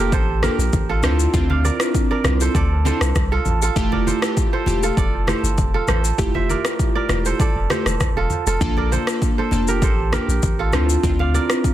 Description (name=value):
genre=afrobeats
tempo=99 BPM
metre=4/4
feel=straight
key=F major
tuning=A4 = 440 Hz
part: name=glassy digital keys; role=accompaniment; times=0.0-11.7 s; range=A3 to A4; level=-23 LUFS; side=equal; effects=chorus
part: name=kora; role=riff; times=0.0-11.7 s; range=F4 to F5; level=-24 LUFS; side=right 6 dB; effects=ping-pong delay
part: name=punchy sub bass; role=bass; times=0.0-11.4 s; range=E1 to D2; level=-21 LUFS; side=equal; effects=none
part: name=afro-pop drum kit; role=drums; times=0.1-11.7 s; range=kick drum, rim click, shaker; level=-22 LUFS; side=equal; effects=overdrive
part: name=congas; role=percussion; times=0.4-11.5 s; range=none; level=-29 LUFS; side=left 2 dB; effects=none
room=digital ambience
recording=dense, heavily limited modern master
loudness=-17 LUFS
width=side -12 dB against mid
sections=0.0-11.7 A section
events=none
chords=0.0 Bbmaj7; 1.0 Dm9; 3.8 Fmaj9; 8.6 Bbmaj7; 10.7 Dm9